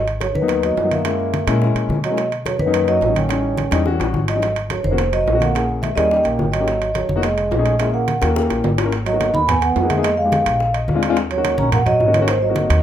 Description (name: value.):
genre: Afro-Cuban jazz.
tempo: 214 BPM.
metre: 4/4.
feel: straight.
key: G# minor.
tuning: A4 = 440 Hz.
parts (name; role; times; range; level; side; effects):
vibraphone with medium mallets; melody; 0.0-12.8 s; B4 to B5; -20 LUFS; equal; none.
breathy trombone; second line; 0.0-12.8 s; D#3 to D#4; -25 LUFS; right 5 dB; none.
upright bass; bass; 0.0-12.8 s; E#1 to B2; -22 LUFS; equal; none.
congas; percussion; 0.1-12.8 s; none; -26 LUFS; equal; none.
timbales; percussion; 0.1-12.8 s; none; -27 LUFS; right 10 dB; none.
bongos; percussion; 0.2-12.8 s; none; -30 LUFS; left 6 dB; none.
warm grand piano; accompaniment; 0.4-12.8 s; E3 to G#5; -22 LUFS; left 5 dB; none.
room: light reverb.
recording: minimal, uncompressed stereo recording.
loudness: -16 LUFS.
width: side -10 dB against mid.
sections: 0.0-8.9 A section; 8.9-12.8 B section.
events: drum fill 3.7-4.4, 8.2-8.9; grand piano fill 10.6-11.2.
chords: 0.0 G#m7; 1.1 F#7; 2.2 Bmaj9; 3.3 A7#11; 4.4 G#m11; 5.0 F7b9; 5.5 A#m7b5; 6.1 D#7; 6.7 G#m7; 7.2 F7alt; 7.8 A#m7b5; 8.4 D#7b9; 8.9 G#m7; 10.0 Fm7b5; 10.6 A#7; 11.2 D#m7; 12.3 G#7.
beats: 0.21 0.49 0.77 | 1.05 1.34 1.62 1.90 | 2.18 2.46 2.74 3.02 | 3.30 3.58 3.87 4.15 | 4.43 4.71 4.99 5.27 | 5.55 5.83 6.11 6.39 | 6.67 6.95 7.24 7.52 | 7.80 8.08 8.36 8.64 | 8.92 9.20 9.48 9.76 | 10.04 10.32 10.60 10.88 | 11.16 11.44 11.72 12.00 | 12.28 12.56.